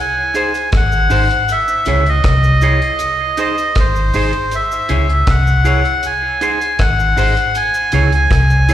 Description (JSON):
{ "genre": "roots reggae", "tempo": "79 BPM", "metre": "4/4", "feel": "straight", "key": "C# harmonic minor", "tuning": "A4 = 440 Hz", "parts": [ { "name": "melodica", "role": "melody", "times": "0.0-8.7 s", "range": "B#4 to G#5", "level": "-16 LUFS", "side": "equal", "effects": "tape echo, slapback echo" }, { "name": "semi-hollow electric guitar", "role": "accompaniment", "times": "0.3-8.7 s", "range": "D#4 to C#5", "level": "-22 LUFS", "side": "right 3 dB", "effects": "lush chorus, tape echo, slapback echo" }, { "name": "deep reggae drum kit", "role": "drums", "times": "0.3-8.7 s", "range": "hi-hat, kick drum, rim click", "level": "-19 LUFS", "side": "equal", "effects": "none" }, { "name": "cabasa", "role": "percussion", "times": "0.3-8.7 s", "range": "none", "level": "-38 LUFS", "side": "left 1 dB", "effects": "none" }, { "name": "mellow electric guitar", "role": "riff", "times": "0.7-8.5 s", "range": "G#2 to C#3", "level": "-25 LUFS", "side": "left 4 dB", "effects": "none" }, { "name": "vintage muted fingered electric bass", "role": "bass", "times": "0.7-8.7 s", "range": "G#1 to C#2", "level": "-14 LUFS", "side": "equal", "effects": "tube saturation" } ], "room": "light reverb", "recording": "live gig heard through the venue's PA, recital hall reverb", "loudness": "-12 LUFS", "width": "side -11 dB against mid", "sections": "0.0-8.7 A section", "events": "none", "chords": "0.0 G#; 1.5 C#m; 3.0 G#; 4.5 C#m; 6.0 G#; 7.5 C#m", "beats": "0.72 | 1.48 2.24 3.00 3.76 | 4.52 5.28 6.03 6.79 | 7.55 8.31" }